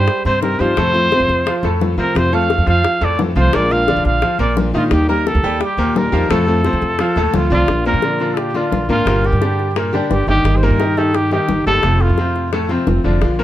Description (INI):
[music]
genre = latin, Cuban son and guajira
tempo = 174 BPM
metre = 4/4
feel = straight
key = Bb major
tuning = A4 = 440 Hz
[part]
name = breathy trumpet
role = melody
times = 0.0-12.5 s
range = F4 to F5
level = -19 LUFS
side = right 1 dB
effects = none
[part]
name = nylon-string guitar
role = accompaniment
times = 0.0-13.4 s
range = C3 to G4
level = -21 LUFS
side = left 2 dB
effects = none
[part]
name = bright grand piano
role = arpeggios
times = 0.0-13.4 s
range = A2 to Bb5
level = -20 LUFS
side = left 1 dB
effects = none
[part]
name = upright bass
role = bass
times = 0.0-13.4 s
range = F1 to F3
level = -18 LUFS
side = right 1 dB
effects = none
[part]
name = bongos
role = percussion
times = 0.1-13.4 s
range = none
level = -23 LUFS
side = left 5 dB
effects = none
[sound]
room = light reverb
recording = close, detailed microphones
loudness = -13 LUFS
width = side -13 dB against mid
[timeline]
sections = 0.0-7.7 A section; 7.7-13.4 B section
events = none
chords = 0.0 Cm; 0.8 F; 3.5 Bb7; 4.9 Eb; 6.3 F; 7.7 Bb; 9.1 Gm; 10.5 Eb/G; 11.8 F